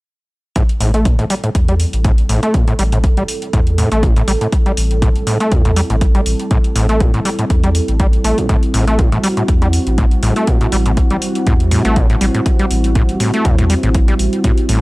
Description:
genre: acid house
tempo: 121 BPM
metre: 4/4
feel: swing 55% on 16ths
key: A dorian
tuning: A4 = 440 Hz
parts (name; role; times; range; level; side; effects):
- dark analog pad; sustained chords; 1.4-14.8 s; G3 to A4; -21 LUFS; right 1 dB; chorus, sidechain pumping
- overdriven acid bass; riff; 0.6-14.8 s; A1 to A3; -18 LUFS; equal; distortion, analog delay
- electronic hi-hat; drums; 0.6-14.8 s; none; -26 LUFS; equal; studio reverb
- electronic kick drum; drums; 0.6-14.6 s; none; -14 LUFS; equal; studio reverb
- saturated sub bass; bass; 0.8-14.8 s; A1 to E2; -16 LUFS; equal; sidechain pumping
room: little or no reverb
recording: dry, gritty hardware recording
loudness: -12 LUFS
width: side -22 dB against mid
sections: 0.6-14.8 A section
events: filter sweep on acid bass 0.6-14.8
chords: 0.6 Am7

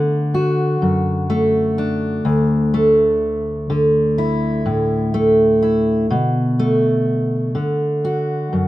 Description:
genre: folk, solo fingerstyle acoustic guitar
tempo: 62 BPM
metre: 4/4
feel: straight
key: unclear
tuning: A4 = 441 Hz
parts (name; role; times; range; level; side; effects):
- fingerpicked steel-string acoustic guitar; solo; 0.0-8.7 s; D2 to F#4; -15 LUFS; equal; none
room: light reverb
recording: minimal, uncompressed stereo recording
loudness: -15 LUFS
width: side -16 dB against mid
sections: 0.0-8.7 A section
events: none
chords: 0.0 Bm7 (rootless); 2.3 Dsus2; 6.1 Bm7

